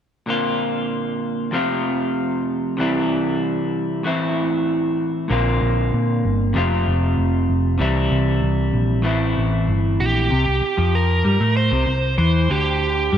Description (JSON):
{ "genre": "rock", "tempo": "96 BPM", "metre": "4/4", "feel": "straight", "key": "C mixolydian", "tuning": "A4 = 440 Hz", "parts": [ { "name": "electric guitar through a small old amp", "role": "riff", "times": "0.3-13.2 s", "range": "F2 to F4", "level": "-20 LUFS", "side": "equal", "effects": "none" }, { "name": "hollow-body short-scale picked electric bass", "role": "bass", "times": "5.3-13.2 s", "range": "F1 to Bb2", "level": "-19 LUFS", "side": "equal", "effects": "none" }, { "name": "biting lead guitar", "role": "melody", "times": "10.0-13.2 s", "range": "G4 to C5", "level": "-20 LUFS", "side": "right 3 dB", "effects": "overdrive, tape echo" } ], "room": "light reverb", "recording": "none", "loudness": "-18 LUFS", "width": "side -9 dB against mid", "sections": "0.3-10.3 A section; 10.3-13.2 B section", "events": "none", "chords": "0.3 Bbadd9; 1.5 F; 2.8 C; 4.0 Am; 5.3 Bbadd9; 6.6 F; 7.8 C; 9.1 Am; 10.3 C" }